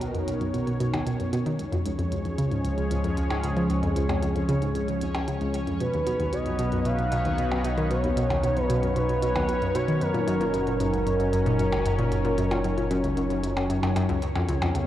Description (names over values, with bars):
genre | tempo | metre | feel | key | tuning
ambient, sequencer-driven space music | 114 BPM | 4/4 | straight | B lydian | A4 = 440 Hz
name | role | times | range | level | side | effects
sweeping resonant pad | sustained chords | 0.0-14.9 s | E#3 to C#5 | -29 LUFS | left 1 dB | chorus
analog pluck | riff | 0.0-14.8 s | C#2 to E#3 | -27 LUFS | equal | chorus, tape echo
warm sub bass | bass | 0.0-14.2 s | F#1 to C#2 | -33 LUFS | equal | none
electronic hi-hat and percussion blips | percussion | 0.0-14.9 s | none | -37 LUFS | equal | overdrive, tape echo
bubbling stepped-filter texture | texture | 2.0-14.9 s | C#4 to C#5 | -38 LUFS | right 2 dB | chorus, built-in reverb
expressive synth lead | melody | 5.8-13.7 s | A#4 to E#5 | -29 LUFS | equal | chorus, tape echo
room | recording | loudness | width
moderate huge ambient reverb, RT60 8.7 s | worn, warbling old tape, cassette tape, warbly pitch drift | -23 LUFS | side -12 dB against mid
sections
0.0-14.2 A section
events
fade-in on sub bass 0.0-14.2; fade-in on synth texture 0.0-14.2; filter sweep on synth arpeggio sound 0.0-14.2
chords
0.0 Bmaj7; 1.6 C#; 5.8 B; 10.0 F#6; 14.2 C#7sus4